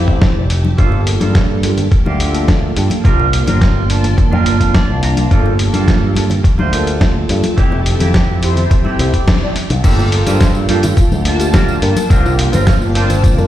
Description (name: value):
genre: nu-disco, nu disco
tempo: 106 BPM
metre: 4/4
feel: straight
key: G dorian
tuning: A4 = 435 Hz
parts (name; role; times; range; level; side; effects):
- mellow synth brass; accompaniment; 0.0-13.5 s; Bb3 to A5; -20 LUFS; right 1 dB; chorus, phaser, sidechain pumping, digital delay
- string machine, full ensemble; sustained chords; 0.0-13.5 s; Bb3 to C6; -25 LUFS; right 1 dB; ensemble chorus, sidechain pumping
- clean electric guitar; riff; 0.0-13.2 s; A3 to Bb5; -23 LUFS; right 4 dB; wide subtle chorus, digital delay
- picked electric bass with an envelope filter; bass; 0.0-13.5 s; F1 to G2; -15 LUFS; equal; tube saturation
- electronic kick drum; drums; 0.1-13.4 s; none; -13 LUFS; equal; overdrive
- dusty soul sampler-style drum kit; drums; 0.2-13.4 s; crash cymbal, hi-hat, snare drum; -20 LUFS; equal; overdrive
- congas, bongos and tambourine; percussion; 0.2-13.5 s; none; -23 LUFS; left 2 dB; none
- soft octave-layered synth lead; melody; 10.8-13.5 s; F4 to C5; -22 LUFS; left 2 dB; chorus, digital delay
room: light reverb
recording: played on a big sound system in a bare room, stone room reverb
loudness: -11 LUFS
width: side -12 dB against mid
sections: 0.0-9.8 A section; 9.8-13.5 B section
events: clean electric guitar fill 4.5-5.3; band accent 9.3; drop 9.8-13.5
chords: 0.0 Fmaj9; 0.8 Gm9; 7.6 Fmaj9; 9.8 Gm9